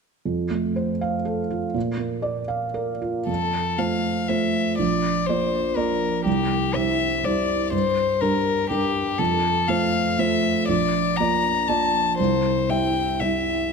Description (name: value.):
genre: neoclassical piano and strings.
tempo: 121 BPM.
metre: 3/4.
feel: rubato.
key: unclear.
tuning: A4 = 440 Hz.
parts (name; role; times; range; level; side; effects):
felt-muted upright piano; accompaniment; 0.3-13.7 s; Bb1 to F5; -23 LUFS; right 3 dB; none.
rich violin; melody; 3.3-13.7 s; G4 to Bb5; -23 LUFS; left 6 dB; none.
room: moderate scoring stage reverb, RT60 2.1 s.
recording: none.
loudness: -20 LUFS.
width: side -5 dB against mid.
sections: 0.3-3.3 A section; 3.3-13.7 B section.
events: none.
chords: 0.3 F; 1.8 Bb; 3.3 F; 4.8 Bb; 6.3 C; 7.7 Gm; 9.2 F; 10.7 Bb; 12.2 C.